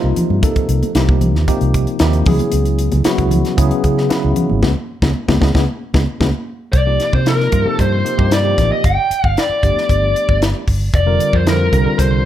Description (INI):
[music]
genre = electric jazz fusion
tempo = 114 BPM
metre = 4/4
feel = straight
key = unclear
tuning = A4 = 440 Hz
[part]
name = tine electric piano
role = accompaniment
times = 0.0-12.2 s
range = C3 to C5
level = -19 LUFS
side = equal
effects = medium stereo tremolo
[part]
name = vintage muted fingered electric bass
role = bass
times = 0.0-12.2 s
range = F1 to Db3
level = -16 LUFS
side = equal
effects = none
[part]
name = crisp fusion drum kit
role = drums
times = 0.2-12.1 s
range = hi-hat, kick drum, snare drum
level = -18 LUFS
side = equal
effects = none
[part]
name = congas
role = percussion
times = 0.2-6.3 s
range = none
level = -22 LUFS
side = left 2 dB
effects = none
[part]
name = bluesy overdriven lead guitar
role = melody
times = 6.7-12.3 s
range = Bb4 to G5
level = -17 LUFS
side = left 2 dB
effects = distortion, plate reverb
[sound]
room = light reverb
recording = none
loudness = -13 LUFS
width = side -12 dB against mid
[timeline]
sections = 0.0-6.7 A section; 6.7-12.3 B section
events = band accent 4.6-6.7; drum fill 6.5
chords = 0.0 Cm7; 2.3 Dbm7; 6.7 Cm7; 8.8 G9; 10.9 Fsus4